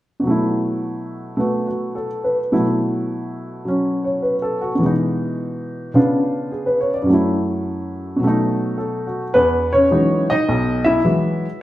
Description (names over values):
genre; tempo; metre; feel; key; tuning
solo jazz; 106 BPM; 4/4; swing 67% on 8ths; E major; A4 = 439 Hz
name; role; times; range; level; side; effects
warm upright piano; solo; 0.2-11.6 s; B1 to E5; -17 LUFS; equal; none
room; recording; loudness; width
wet stone room reverb, RT60 1.4 s; band playing live in one room; -17 LUFS; side -14 dB against mid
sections
0.2-9.3 A section; 9.3-11.6 B section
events
none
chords
0.2 B7sus4; 4.8 Emaj7/B; 5.9 C#7b9; 7.1 F#m7; 8.2 B7; 9.3 Emaj9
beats
| 0.24 0.81 1.38 1.95 | 2.52 3.08 3.65 4.22 | 4.79 5.36 5.93 6.50 | 7.07 7.63 8.20 8.77 | 9.34 9.91 10.48 11.05 | 11.62